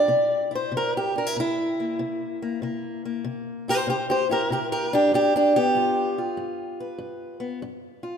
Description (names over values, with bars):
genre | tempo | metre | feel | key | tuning
acoustic country blues, solo or duo | 96 BPM | 4/4 | swing 67% on 8ths | unclear | A4 = 441 Hz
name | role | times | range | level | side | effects
fingerpicked steel-string acoustic guitar | solo | 0.0-8.2 s | G2 to D5 | -22 LUFS | equal | none
room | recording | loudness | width
moderate concert hall reverb, RT60 2.4 s | minimal, uncompressed stereo recording | -22 LUFS | side -7 dB against mid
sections
0.0-8.2 A section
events
steel-string acoustic guitar solo 0.0-8.2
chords
0.1 C7; 5.1 G7